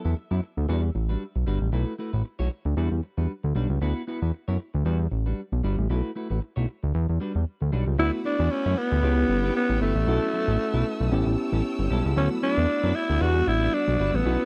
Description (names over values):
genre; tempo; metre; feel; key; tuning
funk; 115 BPM; 4/4; swing 56% on 16ths; E dorian; A4 = 439 Hz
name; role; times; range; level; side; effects
clean electric guitar; riff; 0.0-14.5 s; F#3 to C#5; -35 LUFS; equal; lush chorus
fat analog bass; bass; 0.1-14.4 s; G1 to F#2; -26 LUFS; equal; none
breathy alto saxophone; melody; 8.0-14.5 s; A3 to F#4; -28 LUFS; equal; none
tine electric piano; accompaniment; 8.0-14.5 s; G3 to G4; -32 LUFS; equal; none
clear studio string section; sustained chords; 8.0-14.5 s; B4 to E6; -42 LUFS; equal; none
room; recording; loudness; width
small room ambience; dry, close 1970s-style studio recording; -25 LUFS; mono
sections
0.0-8.0 A section; 8.0-14.5 B section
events
none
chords
0.0 D69; 0.7 Em9; 1.7 B7sus4; 2.8 Em9; 3.8 D69; 4.9 Em9; 5.9 B7sus4; 6.9 Em9; 8.0 D69; 9.0 C#m7b5; 10.1 B7sus4; 11.1 A7; 12.2 D69; 13.2 Em9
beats
0.16 0.69 1.21 | 1.73 2.25 2.77 3.29 | 3.82 4.34 4.86 5.38 | 5.90 6.42 6.95 7.47 | 7.99 8.51 9.03 9.55 | 10.08 10.60 11.12 11.64 | 12.16 12.69 13.21 13.73 | 14.25